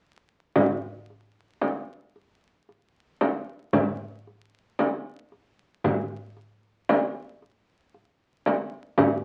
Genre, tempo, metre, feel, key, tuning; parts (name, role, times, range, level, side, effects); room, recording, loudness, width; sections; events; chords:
Turkish makam ensemble; 114 BPM (eighths); 10/8; straight
darbuka; percussion; 0.6-9.2 s; -37 LUFS; equal
frame drum; percussion; 0.6-9.2 s; -25 LUFS; equal
wet studio reverb, RT60 0.7 s; very old 78 rpm record, vinyl crackle; -27 LUFS; mono
0.6-9.2 A section